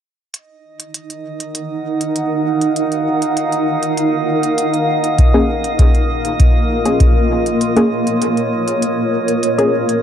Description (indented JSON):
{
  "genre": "ambient dub",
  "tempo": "99 BPM",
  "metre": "4/4",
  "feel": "straight",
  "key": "Eb minor",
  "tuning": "A4 = 440 Hz",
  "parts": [
    { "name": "granular cloud pad", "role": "sustained chords", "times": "1.1-10.0 s", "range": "Bb3 to Gb5", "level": "-17 LUFS", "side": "equal", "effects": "built-in reverb" },
    { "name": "electronic hi-hat", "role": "drums", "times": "0.3-10.0 s", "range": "none", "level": "-26 LUFS", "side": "right 2 dB", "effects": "none" },
    { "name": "drifting glass-harmonics texture", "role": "texture", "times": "1.1-10.0 s", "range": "Eb5", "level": "-24 LUFS", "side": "right 4 dB", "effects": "chorus, built-in reverb" },
    { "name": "electronic kick drum", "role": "drums", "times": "5.2-7.1 s", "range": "none", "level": "-12 LUFS", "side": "equal", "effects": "none" },
    { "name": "filtered dub chord stab", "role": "stabs", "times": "5.3-9.7 s", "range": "Bb3 to Ab4", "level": "-19 LUFS", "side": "left 2 dB", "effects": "chorus, dub echo" }
  ],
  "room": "light reverb, digital ambience",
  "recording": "dark, warm production",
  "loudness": "-13 LUFS",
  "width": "side -9 dB against mid",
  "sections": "0.3-10.0 A section",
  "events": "break 7.6-10.0",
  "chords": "0.3 Ebmadd9; 5.2 Bbm7"
}